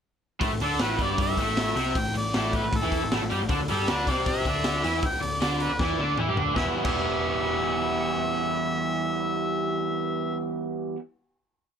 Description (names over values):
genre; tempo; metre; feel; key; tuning
garage rock duo or trio; 156 BPM; 4/4; straight; E minor; A4 = 436 Hz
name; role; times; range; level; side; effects
raw garage guitar; riff; 0.4-11.0 s; G2 to G4; -27 LUFS; right 1 dB; overdrive
hollow-body short-scale picked electric bass; bass; 0.4-10.9 s; E1 to G2; -33 LUFS; left 1 dB; overdrive
raw garage drum kit; drums; 0.4-7.0 s; crash cymbal, hi-hat, kick drum, snare drum, toms; -30 LUFS; equal; none
clear harmonica; melody; 0.6-10.4 s; A4 to G5; -29 LUFS; left 1 dB; overdrive, tape echo
room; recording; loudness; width
light reverb; none; -24 LUFS; side -7 dB against mid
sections
0.4-6.6 pre-chorus; 6.6-9.6 final chord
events
drum fill 5.8-6.6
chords
0.4 A5; 3.5 Cadd9; 6.6 Em